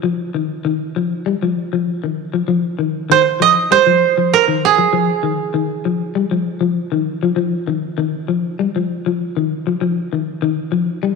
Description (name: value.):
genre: afrobeat.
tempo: 98 BPM.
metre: 4/4.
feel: straight.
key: unclear.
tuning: A4 = 441 Hz.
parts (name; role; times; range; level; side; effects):
clean electric guitar; arpeggios; 0.0-11.1 s; Eb3 to G3; -18 LUFS; left 7 dB; lush chorus.
koto; melody; 3.1-6.6 s; Ab4 to Eb5; -13 LUFS; right 11 dB; slapback echo.
room: wet echo chamber reverb, RT60 2.2 s.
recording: 1960s-style stereo with parts hard left and right.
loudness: -15 LUFS.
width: side -4 dB against mid.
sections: 0.0-11.2 A section.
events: none.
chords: 0.0 Ebsus2.